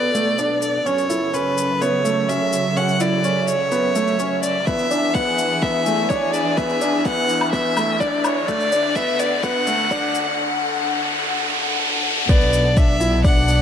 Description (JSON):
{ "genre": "piano and strings electronica", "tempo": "126 BPM", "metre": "4/4", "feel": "straight", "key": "B dorian", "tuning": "A4 = 441 Hz", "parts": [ { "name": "rich violin", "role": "melody", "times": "0.0-13.6 s", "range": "B4 to F#5", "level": "-21 LUFS", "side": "equal", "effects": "tape echo" }, { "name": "dark chamber string section", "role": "sustained chords", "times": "0.0-13.6 s", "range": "B2 to F#5", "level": "-25 LUFS", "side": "equal", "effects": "sidechain pumping, low-pass filter" }, { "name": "felt-muted upright piano", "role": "riff", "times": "0.0-13.6 s", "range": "A3 to E4", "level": "-23 LUFS", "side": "equal", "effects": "tape echo" }, { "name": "rich chamber double bass section", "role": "bass", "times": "0.0-13.6 s", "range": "B1 to F#2", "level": "-28 LUFS", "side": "equal", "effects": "sidechain pumping, high-pass filter" }, { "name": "riser", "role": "sound effects", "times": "0.3-12.3 s", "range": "none", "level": "-27 LUFS", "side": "equal", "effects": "none" }, { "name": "shaker and woodblock", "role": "drums", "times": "0.1-13.6 s", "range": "none", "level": "-29 LUFS", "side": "left 4 dB", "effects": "overdrive" }, { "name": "electronic kick drum", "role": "drums", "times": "4.7-13.3 s", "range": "none", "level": "-19 LUFS", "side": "equal", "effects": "overdrive" } ], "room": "moderate recital hall reverb, RT60 1.5 s, studio ambience", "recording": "dark, warm production, high-pass filter", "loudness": "-17 LUFS", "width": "side -8 dB against mid", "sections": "0.0-12.3 A section; 12.3-13.6 B section", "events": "build-up 0.0-12.3; filter sweep on string section 0.0-12.3; filter sweep 0.0-12.3; riser 0.3-12.3; drop 12.3-13.6", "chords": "0.0 Bm7; 0.9 F#m7; 4.7 E7; 8.5 D; 12.3 Bm7" }